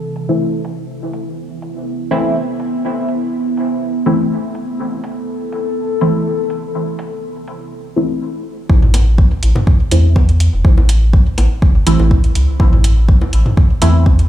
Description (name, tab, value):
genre	dub techno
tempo	123 BPM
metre	4/4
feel	straight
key	A minor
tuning	A4 = 440 Hz
part	warbly tape-like pad	sustained chords	0.0-7.7 s	C3 to A4	-21 LUFS	equal	chorus, built-in reverb, sidechain pumping
part	electronic cabasa and hi-hat	drums	0.0-14.3 s	none	-24 LUFS	right 2 dB	low-pass filter on perc, low-pass filter on hats
part	deep mellow chord stab	stabs	0.3-14.1 s	E3 to E4	-20 LUFS	equal	chorus, phaser, sidechain pumping, dub echo
part	soft dub sub bass	bass	8.7-14.3 s	E1 to E2	-12 LUFS	equal	sidechain pumping
part	electronic kick drum	drums	8.7-14.2 s	none	-11 LUFS	equal	none
part	electronic toms and bongos	percussion	8.8-13.9 s	none	-23 LUFS	left 1 dB	sidechain pumping on toms, sidechain pumping on perc, dub echo
room	little or no reverb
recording	played on a big sound system in a bare room, large studio reverb, faint mains hum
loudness	-12 LUFS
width	side -12 dB against mid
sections	0.0-8.7 A section; 8.7-14.3 B section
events	filter sweep on ambient pad 0.0-8.7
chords	0.0 Am